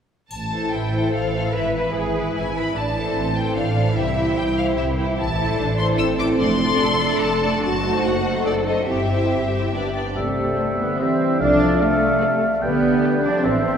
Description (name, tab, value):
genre	classical, dramatic, fast romantic movement for symphony orchestra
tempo	147 BPM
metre	3/4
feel	rubato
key	A minor, C major from 5.2 s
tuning	A4 = 440 Hz
part	rich symphonic violin section	melody	0.3-13.8 s	B4 to E6	-27 LUFS	left 4 dB	none
part	rich studio double bass section	bass	0.3-13.8 s	F1 to C2	-26 LUFS	right 1 dB	none
part	triangle	percussion	0.3-1.1 s	none	-45 LUFS	equal	none
part	rich symphonic violin section	second line	0.5-13.8 s	E4 to D5	-27 LUFS	left 3 dB	none
part	warm symphonic viola section	accompaniment	0.5-13.8 s	E3 to A4	-27 LUFS	right 1 dB	none
part	warm studio cello section	bass	0.7-13.8 s	A3 to B4	-24 LUFS	right 2 dB	none
part	bright small flute group	second line	10.2-13.8 s	A4 to D5	-28 LUFS	equal	none
part	mellow clarinet	second line	10.2-13.8 s	C5 to D5	-28 LUFS	left 4 dB	none
part	warm oboe	second line	10.2-13.8 s	E5 to G5	-26 LUFS	right 1 dB	none
part	mellow bassoon	accompaniment	10.2-13.8 s	G3 to A3	-24 LUFS	right 2 dB	none
part	dark French horn section	sustained chords	10.2-13.8 s	C3 to F3	-25 LUFS	left 3 dB	none
room	wet church reverb, RT60 3.2 s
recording	recorded in a church or concert hall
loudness	-18 LUFS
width	side -7 dB against mid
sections	0.3-10.2 A section; 10.2-13.8 B section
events	none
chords	0.3 Am; 1.5 E/G#; 2.8 Am; 4.0 C; 5.2 Am; 6.4 Dm7/F; 7.6 F#dim7; 8.9 C/G; 9.7 G; 10.2 C; 11.4 Dm7/C; 12.6 G/B